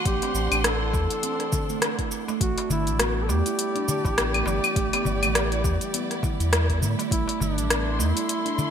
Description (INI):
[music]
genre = organic downtempo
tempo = 102 BPM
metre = 4/4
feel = swing 57% on 16ths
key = unclear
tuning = A4 = 440 Hz
[part]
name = mellow duduk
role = melody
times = 0.0-8.7 s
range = D4 to A4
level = -30 LUFS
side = left 1 dB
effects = ping-pong delay
[part]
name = dark studio string section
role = sustained chords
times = 0.0-8.7 s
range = G3 to C6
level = -33 LUFS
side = right 1 dB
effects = vintage 12-bit sampler grit, sidechain pumping
[part]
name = handpan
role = arpeggios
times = 0.1-8.6 s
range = E3 to E4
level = -30 LUFS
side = right 6 dB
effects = ping-pong delay
[part]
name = warm sub bass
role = bass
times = 0.1-8.1 s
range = G1 to A2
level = -26 LUFS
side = equal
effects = sidechain pumping
[part]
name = deep house drum kit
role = drums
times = 0.1-8.7 s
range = claves, hi-hat, rim click, shaker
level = -26 LUFS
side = left 1 dB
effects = overdrive, gated reverb
[part]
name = electronic kick drum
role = drums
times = 0.1-7.2 s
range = none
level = -28 LUFS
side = equal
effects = overdrive
[part]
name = darbuka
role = percussion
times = 0.2-8.7 s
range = none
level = -33 LUFS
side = left 3 dB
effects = none
[sound]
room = light reverb, studio ambience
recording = bright 1980s-style digital production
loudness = -22 LUFS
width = side -8 dB against mid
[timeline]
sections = 0.0-8.7 A section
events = none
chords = 0.0 D7/A; 2.4 Em7; 7.1 Am7